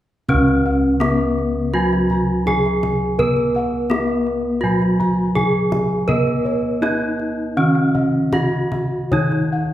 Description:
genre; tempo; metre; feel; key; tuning
Javanese gamelan; 82 BPM; 4/4; uneven beats; unclear; A4 = 436 Hz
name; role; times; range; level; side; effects
gamelan-type bronze metallophone; melody; 0.3-9.7 s; B3-40c to B4-40c; -20 LUFS; equal; none
gamelan-type bronze metallophone; accompaniment; 0.3-9.7 s; C#3 to B3-40c; -22 LUFS; right 1 dB; none
gamelan-type bossed gongs; arpeggios; 0.3-9.7 s; B4-40c to B5-40c; -25 LUFS; left 2 dB; none
gamelan-type bossed gongs; bass; 0.3-9.7 s; C#2 to B4-40c; -24 LUFS; equal; none
kendang; percussion; 0.3-9.4 s; none; -26 LUFS; equal; none
room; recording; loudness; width
wet recital hall reverb, RT60 1.6 s; heard from further back in the room; -16 LUFS; side -13 dB against mid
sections
0.3-9.7 A section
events
none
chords
none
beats
| 0.29 1.01 1.74 2.46 | 3.18 3.90 4.63 5.35 | 6.07 6.80 7.55 8.32 | 9.10

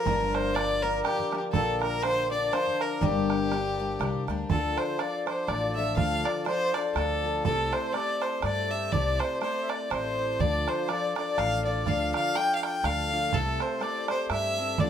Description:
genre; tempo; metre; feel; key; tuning
celtic folk, Celtic waltz; 122 BPM; 3/4; swing 56% on 8ths; G minor, D minor from 4.5 s; A4 = 441 Hz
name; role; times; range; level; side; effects
clear fiddle; melody; 0.0-14.9 s; G4 to G5; -29 LUFS; left 1 dB; none
accordion; second line; 0.0-14.9 s; G4 to G5; -36 LUFS; left 1 dB; none
hammered dulcimer; second line; 0.0-14.9 s; G4 to G5; -34 LUFS; right 2 dB; none
picked twelve-string acoustic guitar; accompaniment; 0.0-14.9 s; G2 to Bb4; -33 LUFS; left 6 dB; none
upright bass; bass; 0.1-14.9 s; G1 to G2; -32 LUFS; equal; none
bodhran; percussion; 0.1-14.9 s; none; -32 LUFS; right 7 dB; none
room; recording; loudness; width
moderate studio ambience, RT60 0.5 s; none; -25 LUFS; side -8 dB against mid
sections
0.0-4.5 A section; 4.5-14.9 B section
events
none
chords
0.1 Gm7; 1.5 Bb; 3.0 Gm; 4.5 Dm; 7.5 C6; 10.4 Dm; 13.3 C6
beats
| 0.06 0.55 1.04 | 1.54 2.03 2.52 | 3.02 3.51 4.00 | 4.50 4.99 5.48 | 5.97 6.47 6.96 | 7.45 7.94 8.43 | 8.93 9.41 9.91 | 10.39 10.88 11.37 | 11.86 12.35 12.84 | 13.33 13.82 14.30 | 14.79

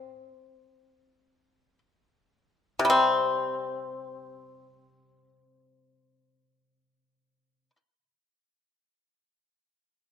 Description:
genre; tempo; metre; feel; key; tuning
chinese traditional, Chinese solo plucked strings; free time; none; none; unclear; A4 = 440 Hz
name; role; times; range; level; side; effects
pipa; solo; 0.0-7.8 s; C3 to C4; -24 LUFS; left 2 dB; none
room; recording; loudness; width
light reverb; minimal, uncompressed stereo recording; -23 LUFS; side -8 dB against mid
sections
0.0-2.9 A section; 2.9-7.3 B section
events
slowing down 0.0-2.9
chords
none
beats
free time

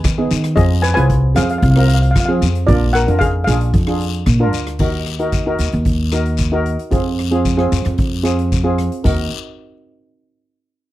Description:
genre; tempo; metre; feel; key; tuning
calypso; 113 BPM; 4/4; straight; Eb minor; A4 = 442 Hz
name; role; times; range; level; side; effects
steel pan; melody; 0.0-4.2 s; F4 to Ab5; -19 LUFS; left 1 dB; none
upright bass; bass; 0.0-9.3 s; Bb1 to F3; -16 LUFS; equal; none
street-band drum kit; drums; 0.0-9.2 s; crash cymbal, hi-hat, kick drum, rim click, splash cymbal; -20 LUFS; equal; none
guiro; percussion; 0.0-9.3 s; none; -30 LUFS; left 14 dB; none
steel pan; accompaniment; 0.2-9.3 s; Cb4 to Bb4; -20 LUFS; right 1 dB; none
room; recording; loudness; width
little or no reverb; dry, close 1970s-style studio recording; -14 LUFS; side -15 dB against mid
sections
0.0-4.8 A section; 4.8-9.0 B section; 9.0-10.9 C section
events
none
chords
0.0 Abm/Eb; 0.6 Fm; 2.7 Bb7; 4.8 Ebm; 6.9 Fm; 9.0 Ebm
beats
0.04 | 0.57 1.09 1.62 2.15 | 2.68 3.21 3.74 4.27 | 4.80 5.33 5.86 6.39 | 6.92 7.45 7.98 8.51 | 9.04

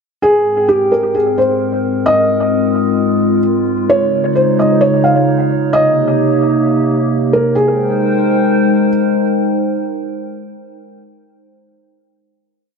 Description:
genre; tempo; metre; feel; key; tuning
hip hop, atmospheric cloud-rap; 131 BPM; 4/4; half-time; Ab major; A4 = 440 Hz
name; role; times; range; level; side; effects
felt-muted upright piano; melody; 0.2-8.9 s; G4 to F5; -14 LUFS; equal; analog delay
warbly tape-like pad; sustained chords; 0.2-10.7 s; Ab2 to G5; -14 LUFS; equal; chorus, built-in reverb
room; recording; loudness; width
light reverb, small room reverb; echo-heavy mix; -11 LUFS; side -5 dB against mid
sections
0.2-7.6 breakdown; 7.6-11.2 final chord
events
none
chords
0.2 Abmaj7; 3.9 Db; 5.7 Cm7; 7.6 Abmaj7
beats
| 0.23 0.69 1.15 1.60 | 2.06 2.52 2.98 3.44 | 3.90 4.35 4.81 5.27 | 5.73 6.18 6.64 7.10 | 7.56 8.02 8.47 8.93 | 9.39 9.85 10.31

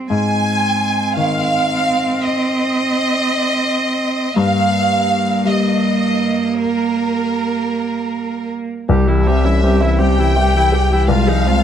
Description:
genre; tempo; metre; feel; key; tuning
neoclassical piano and strings; 52-57 BPM (dotted quarters); 6/8; rubato; unclear; A4 = 440 Hz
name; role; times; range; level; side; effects
rich cello; second line; 0.0-11.6 s; E3 to C4; -20 LUFS; right 5 dB; none
warm baby grand piano; accompaniment; 0.0-11.6 s; C2 to E5; -19 LUFS; left 3 dB; none
warm studio violin section; melody; 0.1-11.6 s; Bb4 to Ab5; -19 LUFS; equal; none
rich viola; accompaniment; 8.9-11.6 s; Eb4 to G4; -23 LUFS; right 2 dB; none
punchy sub bass; bass; 8.9-11.6 s; C2; -16 LUFS; equal; none
room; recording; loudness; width
light reverb; none; -14 LUFS; side -9 dB against mid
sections
0.0-8.9 A section; 8.9-11.6 B section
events
none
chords
0.1 Ab; 4.4 Eb/G; 8.9 C; 11.1 Fm7/C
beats
| 0.11 1.17 | 2.22 3.28 | 4.37 5.47 | 6.60 7.75 | 8.90 9.99 | 11.08

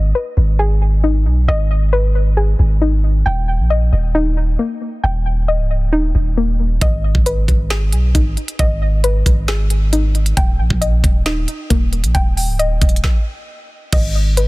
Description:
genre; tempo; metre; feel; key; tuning
hip hop, trap; 135 BPM; 4/4; half-time; G# harmonic minor; A4 = 437 Hz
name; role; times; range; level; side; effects
soft round pluck; arpeggios; 0.0-14.5 s; A#3 to G5; -22 LUFS; left 2 dB; chorus, tape echo
long sustained 808-style bass; bass; 0.0-14.5 s; C#1 to B1; -15 LUFS; equal; none
trap drum kit; drums; 6.8-14.5 s; crash cymbal, hi-hat, kick drum, snare drum; -17 LUFS; equal; none
room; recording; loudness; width
digital ambience; dense, heavily limited modern master; -14 LUFS; side -20 dB against mid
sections
0.0-13.9 A section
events
stop 13.0-13.9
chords
0.0 G#m; 3.3 D#; 6.8 G#m; 10.4 D#; 13.9 G#m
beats
0.15 0.59 1.04 | 1.48 1.93 2.37 2.81 | 3.26 3.70 4.15 4.59 | 5.04 5.48 5.93 6.37 | 6.82 7.26 7.70 8.15 | 8.59 9.04 9.48 9.93 | 10.37 10.81 11.26 11.70 | 12.15 12.59 13.04 13.48 | 13.93 14.37

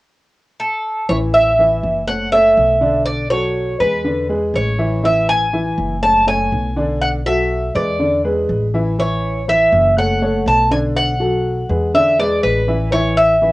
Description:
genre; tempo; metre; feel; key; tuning
latin, Cuban son and guajira; 122 BPM; 4/4; straight; A major; A4 = 439 Hz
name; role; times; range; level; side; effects
Cuban tres; melody; 0.6-13.5 s; A4 to A5; -15 LUFS; equal; cassette tape
warm concert grand piano; arpeggios; 1.1-13.5 s; D3 to E5; -20 LUFS; equal; cassette tape
upright bass; bass; 1.1-13.5 s; F#1 to E2; -22 LUFS; equal; none
room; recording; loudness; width
moderate studio reverb, RT60 0.5 s; home recording on cassette; -14 LUFS; side -19 dB against mid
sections
0.0-1.1 A section; 1.1-13.5 B section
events
none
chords
0.0 N.C.; 1.1 A5; 2.1 F#m7; 3.1 Bm7; 4.1 E7; 5.0 A5; 6.0 F#m; 7.0 Bm7; 8.0 E7; 9.0 A; 10.0 F#m; 11.0 Bm7; 11.9 E7; 12.9 A5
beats
0.10 0.59 | 1.09 1.58 2.08 2.57 | 3.06 3.56 4.05 4.54 | 5.04 5.53 6.03 6.52 | 7.01 7.50 8.00 8.49 | 8.98 9.48 9.97 10.46 | 10.95 11.45 11.94 12.43 | 12.92 13.41

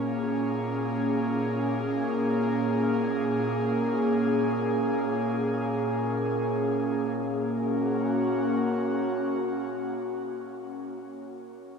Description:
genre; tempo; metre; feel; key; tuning
ambient; free time; none; none; Gb major; A4 = 440 Hz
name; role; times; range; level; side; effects
airy breathy pad; sustained chords; 0.0-11.1 s; Bb2 to Ab4; -25 LUFS; equal; chorus
room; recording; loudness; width
wet huge ambient reverb, RT60 7.1 s; none; -25 LUFS; side -6 dB against mid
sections
0.0-7.2 A section; 7.2-11.6 B section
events
none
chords
0.0 Bbm7; 7.2 Gb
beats
free time

